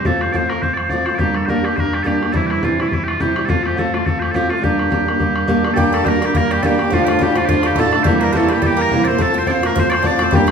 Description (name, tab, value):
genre	celtic folk, Celtic reel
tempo	210 BPM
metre	4/4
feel	swing 55% on 8ths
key	G dorian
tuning	A4 = 442 Hz
part	loud bright bagpipes	melody	0.0-10.5 s	E4 to D5	-20 LUFS	right 1 dB	none
part	fingerpicked steel-string acoustic guitar	accompaniment	0.0-10.5 s	D2 to G4	-18 LUFS	equal	none
part	bodhran	percussion	0.1-10.5 s	none	-21 LUFS	left 2 dB	none
part	Irish bouzouki	second line	5.8-10.5 s	F3 to D4	-24 LUFS	right 5 dB	none
part	accordion	second line	5.8-10.5 s	F4 to D5	-24 LUFS	left 2 dB	none
room	wet recital hall reverb, RT60 1.4 s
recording	recorded in a church or concert hall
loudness	-14 LUFS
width	side -6 dB against mid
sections	0.0-5.8 A section; 5.8-10.5 A section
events	none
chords	0.0 F; 1.2 Gm; 2.3 C; 3.5 F; 4.6 Gm; 6.9 Dm; 8.1 C7; 9.2 F